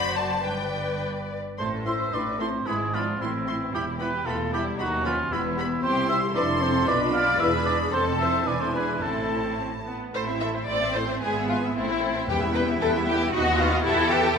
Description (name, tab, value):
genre	quick classical-period movement for symphony orchestra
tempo	104-117 BPM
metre	2/4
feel	rubato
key	A minor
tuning	A4 = 443 Hz
part	rich studio violin section	melody	0.0-14.4 s	C5 to C6	-33 LUFS	left 3 dB	none
part	rich studio violin section	second line	0.0-14.4 s	B3 to E5	-28 LUFS	left 3 dB	none
part	warm studio viola section	accompaniment	0.0-14.4 s	G3 to D#5	-31 LUFS	right 1 dB	none
part	rich studio cello section	bass	0.0-14.4 s	C2 to A4	-31 LUFS	right 2 dB	none
part	rich studio double bass section	bass	0.0-14.3 s	E1 to E2	-33 LUFS	right 3 dB	none
part	warm oboe	second line	1.6-9.6 s	E4 to F5	-26 LUFS	right 1 dB	none
part	dark French horn section	sustained chords	1.6-14.2 s	E3 to G4	-33 LUFS	left 2 dB	none
part	timpani	percussion	12.3-13.0 s	E2	-34 LUFS	left 1 dB	none
room	wet concert hall reverb, RT60 1.7 s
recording	minimal, uncompressed stereo recording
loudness	-22 LUFS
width	side -6 dB against mid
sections	0.0-1.6 A section; 1.6-10.1 B section; 10.1-14.4 B section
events	none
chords	0.5 G; 1.6 Am; 2.7 E/G#; 3.2 Am; 3.7 E5; 4.8 B/D#; 5.3 Em; 5.8 C; 6.3 Fmaj7; 6.9 Bdim; 7.4 E7; 7.9 F; 8.5 E7; 9.0 Am; 11.2 E/G#; 11.7 Am; 12.3 Em; 13.3 B/D#; 13.8 Em